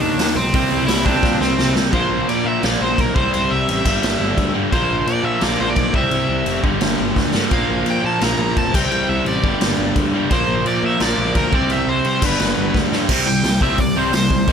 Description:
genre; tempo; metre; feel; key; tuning
punk rock; 172 BPM; 4/4; straight; C mixolydian; A4 = 441 Hz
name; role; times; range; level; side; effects
crunchy overdriven guitar; melody; 0.0-14.5 s; C4 to Bb5; -22 LUFS; equal; none
distorted electric guitar; riff; 0.0-14.5 s; G2 to Eb4; -19 LUFS; equal; distortion
fuzz picked electric bass; bass; 0.0-14.5 s; F1 to C3; -24 LUFS; equal; overdrive
raw garage drum kit; drums; 0.2-14.5 s; crash cymbal, hi-hat, kick drum, snare drum; -20 LUFS; equal; none
room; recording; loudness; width
little or no reverb; none; -15 LUFS; side -7 dB against mid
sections
0.0-1.9 A section; 1.9-13.1 B section; 13.1-14.5 C section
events
drum fill 1.2-1.9, 7.2-7.5, 12.7-13.1; half time 1.9-13.1; overdriven electric guitar solo 13.1-14.5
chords
0.0 Eb5; 0.5 C5; 1.9 Bb5; 3.2 C; 3.9 G5; 4.7 Bb5; 5.9 C; 6.6 G5; 7.5 Bb5; 8.7 C5; 9.4 G5; 10.3 Bb; 11.5 C5; 12.2 G; 13.1 C5

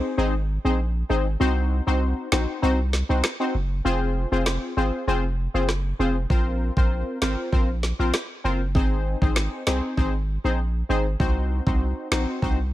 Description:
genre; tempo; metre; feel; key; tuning
dancehall; 98 BPM; 4/4; straight; unclear; A4 = 439 Hz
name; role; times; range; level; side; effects
synth brass stab; accompaniment; 0.0-12.6 s; C4 to C5; -26 LUFS; left 2 dB; chorus
punchy sub bass; bass; 0.2-12.7 s; F1 to C2; -24 LUFS; equal; none
island pop drum kit; drums; 2.3-12.6 s; kick drum, rim click, snare drum; -25 LUFS; equal; none
room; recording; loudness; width
digital ambience; none; -21 LUFS; side -15 dB against mid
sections
0.0-12.7 A section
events
break 0.0-6.3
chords
0.0 Ab; 1.4 Cdim; 3.9 Fm; 6.3 Bbsus2; 8.8 Ab; 11.2 Cdim

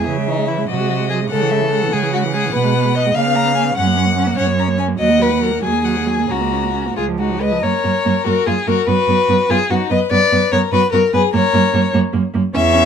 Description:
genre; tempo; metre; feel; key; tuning
quick classical-period movement for string quartet; 97 BPM (dotted quarters); 6/8; rubato; F# major; A4 = 440 Hz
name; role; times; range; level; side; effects
rich violin; melody; 0.0-12.9 s; D#4 to A#5; -22 LUFS; left 10 dB; none
rich violin; second line; 0.0-12.9 s; D#4 to F#5; -18 LUFS; left 3 dB; none
rich viola; accompaniment; 0.0-12.8 s; E3 to C#4; -22 LUFS; right 4 dB; none
rich cello; bass; 0.1-12.9 s; C#2 to C#3; -19 LUFS; right 5 dB; none
room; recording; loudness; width
light reverb; dark, warm production; -14 LUFS; side -7 dB against mid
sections
0.0-7.6 A section; 7.6-12.9 B section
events
none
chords
0.1 C#m; 0.7 G#7/B#; 1.3 C#m; 2.5 G#m/B; 3.2 C#6; 3.8 F#; 5.0 D#m; 6.3 F#/C#; 7.0 C#; 7.6 F#; 8.9 B5/F#; 11.3 F#

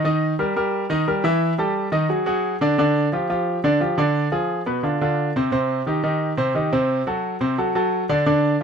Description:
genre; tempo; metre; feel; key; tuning
jazz; 175 BPM; 4/4; straight; unclear; A4 = 441 Hz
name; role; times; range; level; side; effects
clear baby grand piano; solo; 0.0-8.6 s; Cb3 to Fb5; -19 LUFS; equal; none
room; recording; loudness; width
light reverb; close, detailed microphones; -19 LUFS; side -6 dB against mid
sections
0.0-8.6 A section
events
none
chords
0.0 Eb; 1.4 A5; 2.1 D; 2.8 G5; 4.1 Ddim; 4.8 Csus24; 5.5 Cm; 6.9 D7

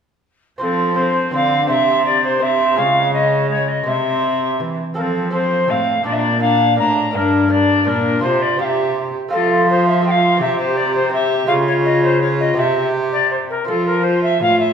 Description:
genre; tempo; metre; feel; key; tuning
classical, renaissance-style consort dance; 166 BPM; 3/4; straight; F major; A4 = 440 Hz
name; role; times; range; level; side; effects
alto recorder; melody; 0.6-14.7 s; A4 to Bb5; -17 LUFS; left 1 dB; none
lute; accompaniment; 0.6-14.7 s; G2 to C5; -22 LUFS; left 1 dB; none
warm viola; accompaniment; 0.6-14.7 s; Ab3 to G4; -22 LUFS; equal; none
warm cello; bass; 0.6-14.7 s; G2 to F3; -22 LUFS; right 2 dB; none
room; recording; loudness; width
wet recital hall reverb, RT60 1.7 s; minimal, uncompressed stereo recording; -14 LUFS; side -7 dB against mid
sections
0.6-9.3 A section; 9.3-14.7 A section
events
none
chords
0.6 F; 1.7 C; 2.8 Db; 3.9 C; 5.0 F; 6.1 Bb; 7.1 Gm; 8.2 Csus4; 8.6 C; 9.3 F; 10.4 C; 11.5 Db; 12.6 C; 13.7 F

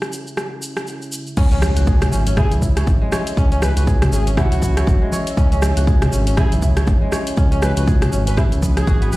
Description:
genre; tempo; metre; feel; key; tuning
afro house; 120 BPM; 4/4; swing 58% on 16ths; C# minor pentatonic; A4 = 440 Hz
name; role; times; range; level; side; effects
dark analog pad; sustained chords; 0.0-9.2 s; C#4 to E5; -30 LUFS; equal; chorus, phaser, sidechain pumping
house drum kit; drums; 0.0-9.2 s; crash cymbal, hi-hat, rim click, shaker; -25 LUFS; equal; overdrive
kora; arpeggios; 1.4-9.2 s; G#3 to C#5; -26 LUFS; equal; sidechain pumping, dub echo
smooth synth bass; bass; 1.4-9.2 s; G#1 to C#2; -18 LUFS; equal; sidechain pumping
electronic kick drum; drums; 1.4-9.0 s; none; -17 LUFS; equal; overdrive
impact; sound effects; 1.4-3.4 s; none; -26 LUFS; equal; none
congas; percussion; 1.5-9.2 s; none; -25 LUFS; left 1 dB; none
expressive portamento lead; melody; 2.4-9.2 s; F#4 to B4; -30 LUFS; equal; lush chorus, dub echo
room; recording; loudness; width
little or no reverb; played on a big sound system in a bare room, large studio reverb; -15 LUFS; side -19 dB against mid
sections
0.0-1.4 A section; 1.4-9.2 B section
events
drop 1.4-9.2; impact 1.4-3.4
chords
0.0 C#m

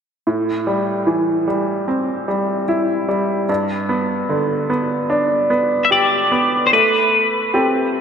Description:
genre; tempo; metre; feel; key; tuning
pop; 74 BPM; 4/4; straight; A minor; A4 = 442 Hz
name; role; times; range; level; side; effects
bright upright piano; accompaniment; 0.3-8.0 s; G2 to A4; -17 LUFS; right 1 dB; none
twelve-string electric guitar; melody; 5.8-8.0 s; B4 to E5; -15 LUFS; left 2 dB; wide subtle chorus, diffuse ambient delay
room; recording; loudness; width
wet lush hall reverb, RT60 2.6 s; dreamy mix soaked in reverb; -15 LUFS; side -7 dB against mid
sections
0.3-6.7 A section; 6.7-8.0 B section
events
none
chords
0.3 Am7; 3.5 G; 6.7 Am7

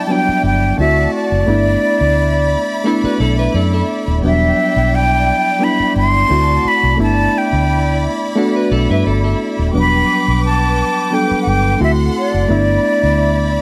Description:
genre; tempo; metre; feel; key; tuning
lush 1970s-style soul; 87 BPM; 4/4; swing 54% on 16ths; unclear; A4 = 437 Hz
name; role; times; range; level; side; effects
breathy concert flute; melody; 0.0-13.6 s; D5 to C6; -19 LUFS; equal; none
warm studio violin section; second line; 0.0-13.6 s; E4 to D6; -25 LUFS; equal; none
barky reed electric piano; accompaniment; 0.0-13.6 s; F#3 to A4; -20 LUFS; equal; overdrive
vintage muted fingered electric bass; bass; 0.3-13.6 s; D#1 to G2; -18 LUFS; equal; none
clean electric guitar; riff; 2.9-4.2, 8.4-9.7 s; E4 to E5; -25 LUFS; equal; none
room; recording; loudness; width
small room ambience; none; -15 LUFS; mono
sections
0.0-13.6 A section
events
none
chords
0.0 Em7; 0.8 D7; 1.5 G69 (rootless); 4.2 Em7; 6.3 D7; 7.0 G69; 9.7 Em7; 11.8 D7; 12.5 G69

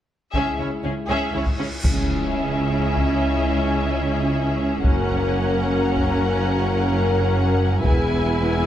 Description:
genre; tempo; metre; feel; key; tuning
cinematic, epic orchestral film score; 80 BPM (dotted quarters); 6/8; straight; C# dorian; A4 = 440 Hz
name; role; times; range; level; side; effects
rich symphonic violin section; melody; 0.3-8.7 s; G#4 to G#5; -30 LUFS; left 3 dB; none
warm symphonic violin section; second line; 0.3-8.7 s; C#4 to B4; -28 LUFS; left 3 dB; none
rich symphonic viola section; accompaniment; 0.3-8.7 s; C#4 to E4; -27 LUFS; right 1 dB; none
dark French horn section; sustained chords; 0.3-8.7 s; G#3 to G#4; -28 LUFS; left 2 dB; none
rich symphonic cello section; bass; 0.3-8.7 s; E2 to C#3; -26 LUFS; equal; none
rich symphonic double bass section; bass; 0.3-8.7 s; E1 to C#2; -24 LUFS; right 2 dB; none
taiko ensemble; drums; 0.3-8.7 s; none; -23 LUFS; equal; none
cymbal swell and impact; sound effects; 1.4-3.3 s; none; -29 LUFS; equal; none
room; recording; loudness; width
moderate scoring stage reverb, RT60 1.7 s; none; -19 LUFS; side -11 dB against mid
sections
0.3-1.9 A section; 1.9-8.7 B section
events
cymbal swell 1.4-1.9; build-up 1.9-8.7; impact 1.9-3.4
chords
0.3 C#m; 4.8 F#; 7.8 E

